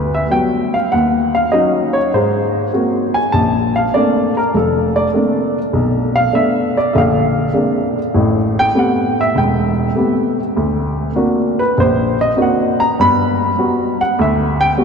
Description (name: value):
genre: jazz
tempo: 100 BPM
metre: 4/4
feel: swing 69% on 8ths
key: unclear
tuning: A4 = 438 Hz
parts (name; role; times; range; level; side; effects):
- warm baby grand piano; solo; 0.0-14.8 s; E1 to B5; -13 LUFS; equal; none
room: wet cathedral reverb, RT60 6.0 s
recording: in a vast, echoing space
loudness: -13 LUFS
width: side -6 dB against mid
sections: 0.0-14.8 A section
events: none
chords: 0.0 Gmaj7; 0.9 Ebm7; 2.1 Ab9; 3.3 Bbmaj9; 5.7 Bm7b5; 6.9 Bb9; 8.1 Am9; 10.6 Daug7; 13.0 Gmaj7